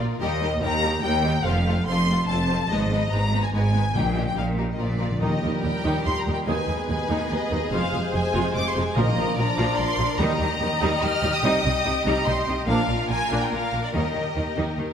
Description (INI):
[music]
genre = cinematic, heroic adventure film score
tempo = 144 BPM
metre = 3/4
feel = straight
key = Eb major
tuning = A4 = 440 Hz
[part]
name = clear symphonic violin section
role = second line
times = 0.0-14.9 s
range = Eb4 to Eb5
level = -29 LUFS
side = left 4 dB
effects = none
[part]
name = warm symphonic viola section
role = accompaniment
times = 0.0-14.9 s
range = Eb3 to F4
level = -30 LUFS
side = equal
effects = none
[part]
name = rich studio double bass section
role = bass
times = 0.0-14.9 s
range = F1 to Eb2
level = -28 LUFS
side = right 2 dB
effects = none
[part]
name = rich symphonic cello section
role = bass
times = 0.0-14.9 s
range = Eb2 to Eb3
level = -27 LUFS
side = right 1 dB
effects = none
[part]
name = rich symphonic violin section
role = melody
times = 0.2-14.8 s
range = D5 to F6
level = -28 LUFS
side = left 2 dB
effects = none
[part]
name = timpani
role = percussion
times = 4.0-5.8, 9.0-10.8 s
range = Bb2 to Eb3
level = -29 LUFS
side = left 1 dB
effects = none
[part]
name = warm trombone section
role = sustained chords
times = 5.2-14.1 s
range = Bb2 to Eb4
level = -31 LUFS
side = right 2 dB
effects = none
[sound]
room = wet scoring stage reverb, RT60 2.0 s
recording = none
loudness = -21 LUFS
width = side -8 dB against mid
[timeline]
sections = 0.0-5.2 A section; 5.2-14.9 B section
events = timpani fill 4.8-5.2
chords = 0.2 Eb; 1.5 F; 2.7 Abm; 4.0 Eb/Bb; 4.8 Bb; 5.2 Eb; 6.5 Abm/Eb; 7.7 Fm; 9.0 Bbsus4; 9.4 Bb; 10.2 Eb; 11.4 Cm; 12.7 Bb; 13.9 Eb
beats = | 0.21 0.63 1.04 | 1.46 1.87 2.29 | 2.70 3.12 3.54 | 3.95 4.37 4.80 | 5.22 5.64 6.06 | 6.47 6.89 7.30 | 7.72 8.13 8.55 | 8.96 9.37 9.79 | 10.20 10.61 11.03 | 11.44 11.86 12.27 | 12.68 13.10 13.52 | 13.94 14.36 14.79